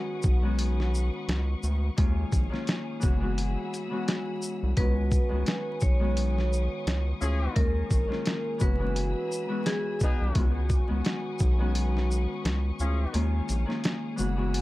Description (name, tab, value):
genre	hip hop, boom-bap hip-hop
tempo	86 BPM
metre	4/4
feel	swing 59% on 16ths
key	C# dorian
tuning	A4 = 435 Hz
part	Celtic harp	accompaniment	0.0-14.6 s	D#3 to F#4	-32 LUFS	left 2 dB	cassette tape, high-pass filter, low-pass filter
part	clear studio string section	sustained chords	0.0-14.6 s	G#4 to E6	-43 LUFS	left 4 dB	high-pass filter, low-pass filter
part	round analog bass	bass	0.2-14.6 s	F#1 to D#2	-27 LUFS	equal	none
part	boom bap sampler-style drum kit	drums	0.2-14.6 s	hi-hat, kick drum, shaker, snare drum	-27 LUFS	equal	none
part	vibraphone with hard mallets	melody	4.8-10.0 s	G#4 to C#5	-34 LUFS	right 2 dB	high-pass filter, low-pass filter, analog delay
part	mellow horn section	stabs	7.2-13.3 s	B3 to G#4	-36 LUFS	left 2 dB	high-pass filter, low-pass filter, analog delay
room	little or no reverb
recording	dark, warm production, vinyl crackle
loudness	-25 LUFS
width	side -18 dB against mid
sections	0.0-14.6 A section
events	break 3.4-4.8; kick muted 13.1-14.6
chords	0.0 C#9sus4; 2.0 D#9sus4; 3.0 F#9sus4; 4.8 C#9sus4; 7.6 D#9sus4; 8.6 F#9sus4; 10.4 C#9sus4; 13.1 D#9sus4